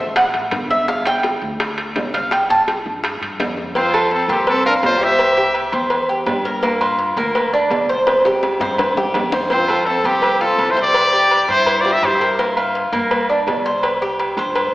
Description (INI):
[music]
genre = latin, Cuban son and guajira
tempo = 167 BPM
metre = 4/4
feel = straight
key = F major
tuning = A4 = 440 Hz
[part]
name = Cuban tres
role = arpeggios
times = 0.0-14.7 s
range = Bb3 to A5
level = -18 LUFS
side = right 1 dB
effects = none
[part]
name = upright bass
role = bass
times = 0.0-14.7 s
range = G1 to G2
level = -32 LUFS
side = equal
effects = none
[part]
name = bongos and cowbell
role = percussion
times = 0.2-14.7 s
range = none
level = -24 LUFS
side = left 1 dB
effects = none
[part]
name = timbales and agogo bells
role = percussion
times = 0.2-14.7 s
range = none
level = -22 LUFS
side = equal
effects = none
[part]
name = brilliant trumpet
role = melody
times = 3.8-5.6, 9.5-12.3 s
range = G4 to E5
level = -17 LUFS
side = equal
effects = none
[part]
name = warm chamber violin section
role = second line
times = 3.8-5.6, 9.5-12.3 s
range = Bb3 to G4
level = -24 LUFS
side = equal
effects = none
[sound]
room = wet scoring stage reverb, RT60 1.6 s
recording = recorded in a church or concert hall, AM radio sound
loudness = -15 LUFS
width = side -17 dB against mid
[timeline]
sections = 0.0-3.8 A section; 3.8-14.7 B section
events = Cuban tres solo 0.0-3.8; drum fill 8.1-9.5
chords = 0.0 N.C.; 0.9 G5; 2.3 C5; 3.8 F; 5.2 C7; 6.6 Gm7; 8.1 C5; 9.5 F; 10.9 C5; 12.4 Gm7; 13.8 C5